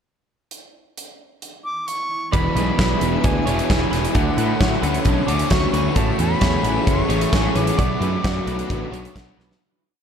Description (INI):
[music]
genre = rock, shoegaze and dream pop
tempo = 132 BPM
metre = 4/4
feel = straight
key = E mixolydian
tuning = A4 = 441 Hz
[part]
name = big rock drum kit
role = drums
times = 0.5-9.6 s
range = hi-hat, kick drum, snare drum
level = -22 LUFS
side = equal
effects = none
[part]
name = bright reedy concert flute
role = melody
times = 1.6-9.1 s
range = F#5 to D6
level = -27 LUFS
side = right 1 dB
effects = digital delay
[part]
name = icy glass pad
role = sustained chords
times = 2.9-9.6 s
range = D4 to G#5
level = -30 LUFS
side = left 2 dB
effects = chorus, built-in reverb
[part]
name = direct-recorded clean electric guitar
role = arpeggios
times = 2.3-9.6 s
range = A4 to D5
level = -32 LUFS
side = right 10 dB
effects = ensemble chorus, digital delay
[part]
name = overdriven electric guitar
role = riff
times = 2.3-9.6 s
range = E2 to D4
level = -28 LUFS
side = equal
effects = none
[part]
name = overdriven semi-hollow guitar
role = riff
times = 2.3-9.6 s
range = E2 to G#4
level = -26 LUFS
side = left 13 dB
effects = ensemble chorus
[part]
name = overdriven semi-hollow guitar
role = riff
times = 2.3-9.6 s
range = A2 to G#4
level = -27 LUFS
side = right 12 dB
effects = reverse reverb
[part]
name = fuzz picked electric bass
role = bass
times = 2.3-9.5 s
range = E1 to A2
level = -24 LUFS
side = equal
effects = overdrive
[sound]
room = little or no reverb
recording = dark, warm production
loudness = -17 LUFS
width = side -7 dB against mid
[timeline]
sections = 0.5-2.3 pickup bar; 2.3-9.6 verse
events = fade-out 7.8-9.6; drum fill 9.4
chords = 0.5 N.C.; 2.3 E7; 4.1 Dmaj7; 6.0 Amaj7; 7.8 Bm7